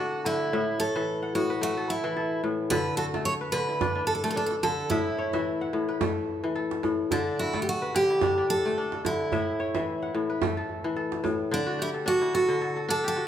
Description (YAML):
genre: west african traditional, West African string and xylophone music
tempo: 109 BPM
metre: 4/4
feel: swing 55% on 16ths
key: D major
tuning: A4 = 437 Hz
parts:
  - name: picked steel-string acoustic guitar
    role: melody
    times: 0.0-13.3 s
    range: D4 to C#5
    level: -27 LUFS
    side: right 1 dB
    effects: none
  - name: kora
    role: arpeggios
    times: 0.0-13.3 s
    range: A2 to F#5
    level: -28 LUFS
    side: left 3 dB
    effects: none
  - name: djembe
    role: percussion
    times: 2.7-11.5 s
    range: none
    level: -33 LUFS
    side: right 6 dB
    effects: none
room: moderate recital hall reverb, RT60 1.7 s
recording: recorded in a church or concert hall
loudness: -25 LUFS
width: side -10 dB against mid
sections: 0.0-11.5 A section; 11.5-13.3 B section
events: none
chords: 0.0 D; 0.5 A; 2.7 D; 4.9 A; 7.1 D; 9.3 A; 11.5 D